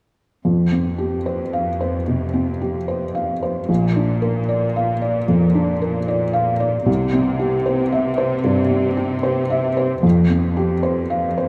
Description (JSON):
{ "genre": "cinematic", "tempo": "75 BPM", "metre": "4/4", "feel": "rubato", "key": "unclear", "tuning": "A4 = 436 Hz", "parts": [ { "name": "felt-muted upright piano", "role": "accompaniment", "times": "0.4-11.5 s", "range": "Bb1 to F5", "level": "-21 LUFS", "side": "equal", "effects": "none" }, { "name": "rich symphonic cello section", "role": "bass", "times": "0.5-11.5 s", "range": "F2 to C3", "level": "-25 LUFS", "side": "equal", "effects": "none" } ], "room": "wet scoring stage reverb, RT60 1.5 s", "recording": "none", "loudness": "-19 LUFS", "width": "mono", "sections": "0.4-11.5 A section", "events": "none", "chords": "0.4 Fsus2; 3.7 Bb; 6.9 C; 10.0 Fsus2" }